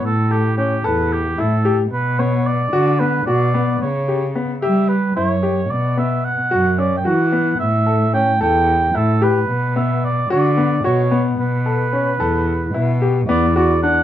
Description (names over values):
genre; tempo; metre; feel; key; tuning
contemporary instrumental, chamber music in an uneven meter; 222 BPM (eighths); 7/8; straight; B minor; A4 = 439 Hz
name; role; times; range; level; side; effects
warm oboe; melody; 0.0-14.0 s; G4 to G5; -20 LUFS; right 2 dB; none
bright baby grand piano; arpeggios; 0.0-14.0 s; B3 to A4; -20 LUFS; left 3 dB; none
muted cello; bass; 0.0-14.0 s; E2 to G3; -18 LUFS; equal; none
room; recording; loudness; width
light reverb; dark, warm production; -15 LUFS; side -11 dB against mid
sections
0.0-13.3 A section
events
none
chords
0.0 A7(no3); 1.9 Bm; 3.8 C#(b5, no3); 5.7 Bsus4; 7.6 A7(no3); 9.5 Bm; 11.4 Asus2; 13.3 E7sus2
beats
| 0.04 0.31 0.58 0.85 1.12 1.39 1.66 | 1.92 2.19 2.46 2.73 3.00 3.27 3.54 | 3.81 4.08 4.35 4.62 4.89 5.16 5.43 | 5.70 5.97 6.24 6.51 6.78 7.05 7.33 | 7.60 7.87 8.14 8.41 8.68 8.95 9.22 | 9.49 9.76 10.04 10.31 10.58 10.85 11.12 | 11.39 11.66 11.93 12.21 12.48 12.75 13.02 | 13.29 13.56 13.83